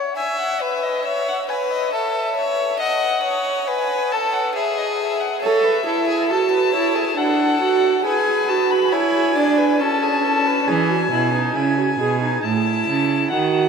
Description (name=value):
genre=classical, baroque-style fugue for string quartet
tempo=68 BPM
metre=3/4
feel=straight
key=A major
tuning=A4 = 445 Hz
part: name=dark violin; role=melody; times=0.0-13.7 s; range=C#5 to B5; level=-22 LUFS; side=left 4 dB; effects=none
part: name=warm violin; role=second line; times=0.2-10.7 s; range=G#4 to E5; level=-23 LUFS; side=left 1 dB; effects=none
part: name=warm viola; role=accompaniment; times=5.4-13.7 s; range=C#4 to A4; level=-19 LUFS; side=right 4 dB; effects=none
part: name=rich cello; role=bass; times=10.7-13.7 s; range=A2 to E3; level=-21 LUFS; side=right 7 dB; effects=none
room=wet huge ambient reverb, RT60 7.5 s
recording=in a vast, echoing space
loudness=-17 LUFS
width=side -6 dB against mid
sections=0.0-13.7 A section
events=none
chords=0.2 E5; 1.9 A; 2.8 B7; 4.6 E/G#; 5.4 A; 7.2 D; 8.0 E7; 9.8 A/C#; 10.7 E; 12.4 A